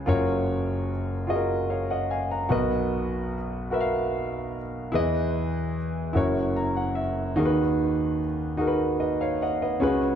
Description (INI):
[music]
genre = gospel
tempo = 49 BPM (dotted quarters)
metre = 6/8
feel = straight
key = unclear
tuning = A4 = 436 Hz
[part]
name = warm concert grand piano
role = solo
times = 0.0-10.2 s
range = F#1 to A#5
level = -23 LUFS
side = equal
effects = none
[sound]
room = moderate scoring stage reverb, RT60 1.8 s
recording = none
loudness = -24 LUFS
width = side -8 dB against mid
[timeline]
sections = 0.0-10.2 A section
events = grand piano fill 6.2-7.4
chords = 0.1 F#maj7; 2.5 Bmaj7; 4.9 Emaj7; 6.2 F#7; 7.4 B6/D#